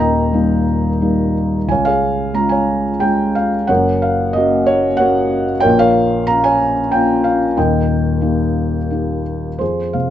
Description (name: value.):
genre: classical, lyrical solo piano.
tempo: 91 BPM.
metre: 3/4.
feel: uneven beats, rubato.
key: unclear.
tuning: A4 = 440 Hz.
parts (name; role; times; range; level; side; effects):
felt-muted upright piano; solo; 0.0-10.1 s; Eb1 to Bb5; -13 LUFS; equal; none.
room: light reverb.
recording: dark, warm production, nothing above 7.8 kHz.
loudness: -13 LUFS.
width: side -11 dB against mid.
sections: 0.0-9.6 A section.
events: none.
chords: 0.0 Eb; 1.7 Db; 3.7 Gb; 5.6 Bbm; 7.6 Eb.